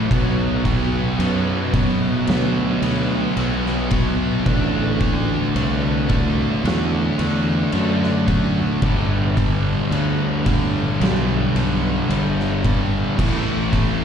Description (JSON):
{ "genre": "stoner and doom metal", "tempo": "55 BPM", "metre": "4/4", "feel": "straight", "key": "unclear", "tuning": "A4 = 440 Hz", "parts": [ { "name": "cranked stack guitar", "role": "riff", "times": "0.0-14.0 s", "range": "G2 to D4", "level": "-26 LUFS", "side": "equal", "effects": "overdrive" }, { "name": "thick fuzz guitar", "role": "riff", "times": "0.0-14.0 s", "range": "G2 to D4", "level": "-25 LUFS", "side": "left 10 dB", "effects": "distortion" }, { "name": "thick fuzz guitar", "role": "riff", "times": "0.0-14.0 s", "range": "G2 to D4", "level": "-24 LUFS", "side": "right 10 dB", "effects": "distortion" }, { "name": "overdriven fingered electric bass", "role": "bass", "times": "0.1-14.0 s", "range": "G1 to F#2", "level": "-22 LUFS", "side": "equal", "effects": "none" }, { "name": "oversized low-tuned drum kit", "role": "drums", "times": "0.1-14.0 s", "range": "crash cymbal, kick drum, ride cymbal, snare drum", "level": "-24 LUFS", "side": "left 1 dB", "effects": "none" } ], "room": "little or no reverb", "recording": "live gig heard through the venue's PA, recital hall reverb", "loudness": "-17 LUFS", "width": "side -8 dB against mid", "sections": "0.0-14.0 A section", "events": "none", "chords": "0.1 Bm; 4.5 D/A; 8.8 G; 13.2 A5" }